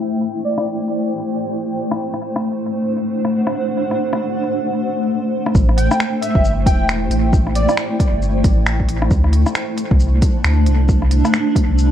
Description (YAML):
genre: future garage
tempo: 135 BPM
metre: 4/4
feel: swing 60% on 16ths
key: A dorian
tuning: A4 = 440 Hz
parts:
  - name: granular cloud pad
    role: sustained chords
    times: 0.0-11.9 s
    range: A3 to A5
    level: -20 LUFS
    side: equal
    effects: built-in reverb, sidechain pumping
  - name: airy dreamy lead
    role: melody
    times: 0.4-0.6, 5.8-7.7 s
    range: D5 to G5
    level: -24 LUFS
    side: equal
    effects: chorus, analog delay
  - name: organic electronic drum kit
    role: drums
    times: 0.6-11.9 s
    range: finger snaps, hi-hat, rim click, shaker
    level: -24 LUFS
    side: left 1 dB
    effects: studio reverb, dub echo
  - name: warm sub bass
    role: bass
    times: 5.5-11.9 s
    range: E1 to D2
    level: -16 LUFS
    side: equal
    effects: sidechain pumping
  - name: electronic kick drum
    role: drums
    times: 5.5-11.7 s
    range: none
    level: -15 LUFS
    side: equal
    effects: overdrive, studio reverb
room: light reverb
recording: echo-heavy mix, cassette tape, low-pass filter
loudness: -15 LUFS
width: side -10 dB against mid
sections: 0.0-5.6 A section; 5.6-11.9 B section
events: filter sweep 0.0-5.6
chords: 0.0 Am7; 2.0 D7; 5.6 Am7; 9.1 D5